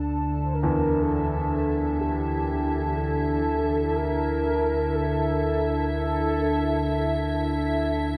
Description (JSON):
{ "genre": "dark ambient drone", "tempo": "61 BPM", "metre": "4/4", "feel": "straight", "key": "unclear", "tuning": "A4 = 440 Hz", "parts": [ { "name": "dark analog pad", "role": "sustained chords", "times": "0.0-8.2 s", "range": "D4 to A5", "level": "-30 LUFS", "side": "equal", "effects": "subtle chorus" }, { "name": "deep rumbling drone", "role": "drone", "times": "0.0-8.2 s", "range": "D2 to D3", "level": "-30 LUFS", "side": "equal", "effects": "built-in reverb" }, { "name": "icy glass pad", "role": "texture", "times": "0.6-8.2 s", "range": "E4 to E5", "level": "-35 LUFS", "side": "equal", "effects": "chorus, built-in reverb" }, { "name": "mellow horn-like synth lead", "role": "melody", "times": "0.4-7.3 s", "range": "G4 to C5", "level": "-31 LUFS", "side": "equal", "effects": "lush chorus, delay" }, { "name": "warm baby grand piano", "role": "arpeggios", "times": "0.6-8.2 s", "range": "E2", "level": "-36 LUFS", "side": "equal", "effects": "delay" } ], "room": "wet huge ambient reverb, RT60 8.2 s", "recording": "in a vast, echoing space", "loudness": "-25 LUFS", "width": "mono", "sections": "0.0-8.2 A section", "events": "none", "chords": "0.0 D5" }